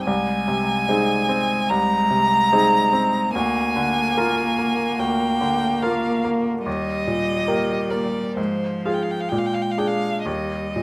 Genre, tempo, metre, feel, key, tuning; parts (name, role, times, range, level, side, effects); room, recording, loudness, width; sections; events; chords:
classical, slow romantic movement for piano trio; 61-74 BPM; 4/4; rubato; A4 = 440 Hz
rich violin; melody; 0.0-10.8 s; C5 to Bb5; -25 LUFS; equal
rich cello; second line; 0.0-10.8 s; F3 to Bb3; -28 LUFS; equal
bright grand piano; accompaniment; 0.0-10.8 s; C2 to Bb4; -26 LUFS; equal
light reverb; -21 LUFS; mono
0.0-10.8 A section
0.1 Ab/C; 3.4 Bb7/D; 6.7 Eb; 8.4 Fm/Ab; 9.3 Bb7; 10.3 Eb